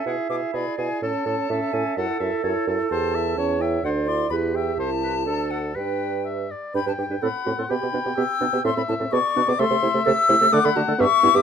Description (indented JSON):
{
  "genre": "quick classical-period movement for wind quintet",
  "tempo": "127 BPM",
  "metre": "2/4",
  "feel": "straight",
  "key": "G major",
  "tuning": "A4 = 444 Hz",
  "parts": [
    { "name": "bright silver concert flute", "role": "melody", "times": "0.0-11.4 s", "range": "C#5 to E6", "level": "-24 LUFS", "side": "left 6 dB", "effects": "none" },
    { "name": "clear oboe", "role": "second line", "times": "0.0-11.4 s", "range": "G#4 to G5", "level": "-29 LUFS", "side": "left 3 dB", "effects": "none" },
    { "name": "mellow clarinet", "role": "accompaniment", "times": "0.0-11.4 s", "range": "D4 to E5", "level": "-28 LUFS", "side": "right 10 dB", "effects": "none" },
    { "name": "warm French horn", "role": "accompaniment", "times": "0.0-11.4 s", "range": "A3 to G4", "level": "-29 LUFS", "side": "equal", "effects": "none" },
    { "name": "dark bassoon", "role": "bass", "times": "0.1-11.4 s", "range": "C2 to D3", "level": "-26 LUFS", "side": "right 3 dB", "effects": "none" }
  ],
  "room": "light reverb",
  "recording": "dark, warm production",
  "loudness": "-20 LUFS",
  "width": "side -7 dB against mid",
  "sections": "0.0-6.7 A section; 6.7-11.4 B section",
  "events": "none",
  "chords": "0.1 E7/B; 1.0 A; 2.0 F#m7; 2.9 C/E; 3.4 A7/E; 3.8 D7sus2; 4.3 Em; 4.8 C; 5.3 D; 5.8 G; 7.2 F#dim; 7.7 G/B; 8.7 Am; 9.1 G#dim (rootless); 9.6 Am/C; 10.5 D"
}